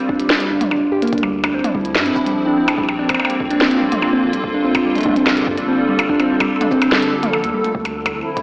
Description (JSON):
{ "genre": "IDM", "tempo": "145 BPM", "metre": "4/4", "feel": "straight", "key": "unclear", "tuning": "A4 = 440 Hz", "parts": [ { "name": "hollow soft pad", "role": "sustained chords", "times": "0.0-8.4 s", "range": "D3 to A4", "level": "-21 LUFS", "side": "equal", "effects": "ensemble chorus" }, { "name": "harp-like synth pluck", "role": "arpeggios", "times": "0.0-7.7 s", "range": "F3 to G4", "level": "-17 LUFS", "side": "equal", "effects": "chorus, tape echo" }, { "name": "warm sub bass", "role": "bass", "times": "0.1-8.4 s", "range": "D1 to G2", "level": "-34 LUFS", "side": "equal", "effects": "transformer saturation" }, { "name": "electronic kick drum", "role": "drums", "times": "0.1-8.4 s", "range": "none", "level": "-28 LUFS", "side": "equal", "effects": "overdrive" }, { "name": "glitchy drum kit", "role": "drums", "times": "0.2-8.4 s", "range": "hi-hat, percussion blips, shaker, snare drum, toms", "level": "-20 LUFS", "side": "equal", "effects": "overdrive, digital delay" } ], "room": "wet digital room reverb, RT60 1.2 s", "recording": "blown-out, overdriven recording, overdrive, AM radio sound", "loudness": "-14 LUFS", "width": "side -26 dB against mid", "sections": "0.0-7.7 A section", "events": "kick drops out 6.9-7.7", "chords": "0.0 Gm7; 1.1 Dm9; 2.8 Bbmaj9; 7.7 Dm9" }